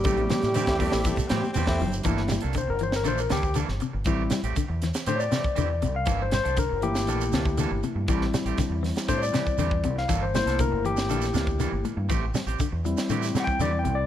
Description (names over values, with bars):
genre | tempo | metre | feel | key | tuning
afrobeat | 120 BPM | 4/4 | straight | G dorian | A4 = 440 Hz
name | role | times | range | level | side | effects
growling alto saxophone | melody | 0.0-1.8 s | G4 | -30 LUFS | right 1 dB | tape echo
clear trombone | second line | 0.0-1.8 s | G3 | -34 LUFS | right 5 dB | none
barky tine electric piano | accompaniment | 0.0-14.1 s | G3 to G5 | -28 LUFS | left 3 dB | overdrive
electric guitar at the edge of break-up | stabs | 0.0-14.0 s | E3 to A4 | -34 LUFS | right 6 dB | tape echo
tight funk drum kit | drums | 0.0-14.0 s | hi-hat, kick drum, snare drum | -30 LUFS | right 1 dB | none
semi-hollow electric guitar | arpeggios | 0.1-14.0 s | A2 to G3 | -33 LUFS | left 8 dB | tremolo
deep dub fingered electric bass | bass | 0.1-14.1 s | G1 to A2 | -29 LUFS | equal | none
congas | percussion | 0.1-1.9 s | none | -32 LUFS | left 2 dB | none
shekere | percussion | 0.1-14.0 s | none | -35 LUFS | right 5 dB | none
raspy baritone saxophone | second line | 0.5-2.0 s | A3 to C4 | -36 LUFS | left 2 dB | tape echo
room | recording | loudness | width
light reverb | none | -23 LUFS | side -11 dB against mid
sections
0.0-2.1 A section; 2.1-14.1 B section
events
tine electric piano solo 2.1-14.1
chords
0.1 Am7; 2.1 Gm69; 4.1 Am7; 6.1 Gm69; 8.1 Am7; 10.1 Gm69; 12.1 Am7